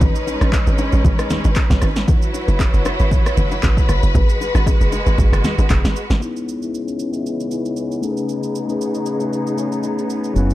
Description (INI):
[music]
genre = amapiano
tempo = 116 BPM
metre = 4/4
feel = swing 55% on 16ths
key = unclear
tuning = A4 = 440 Hz
[part]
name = clear studio string section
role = sustained chords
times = 0.0-10.5 s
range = C#2 to B4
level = -24 LUFS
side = equal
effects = sidechain pumping, low-pass filter
[part]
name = tight log drum bass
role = bass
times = 0.0-6.2 s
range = F#1 to A1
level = -17 LUFS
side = equal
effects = none
[part]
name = deep house drum kit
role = drums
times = 0.0-10.5 s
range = handclaps, kick drum, rim click, shaker, snare drum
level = -18 LUFS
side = equal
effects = none
[part]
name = congas and bongos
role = percussion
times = 0.0-6.2 s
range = none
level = -26 LUFS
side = left 4 dB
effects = none
[part]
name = mellow tine electric piano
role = accompaniment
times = 6.2-10.5 s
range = F#3 to E5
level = -21 LUFS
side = left 3 dB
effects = low-pass filter
[part]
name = fingered electric bass with an envelope filter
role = bass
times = 10.4-10.5 s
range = F#1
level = -16 LUFS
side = equal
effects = none
[sound]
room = little or no reverb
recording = dark, warm production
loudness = -16 LUFS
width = side -15 dB against mid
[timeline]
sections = 0.0-6.2 A section; 6.2-10.5 B section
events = drop 0.0-6.2; filter sweep 6.2-10.5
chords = 0.0 Amaj9#11; 2.1 F#7sus4; 4.2 G#m7; 6.2 C#m9; 8.0 Amaj9#11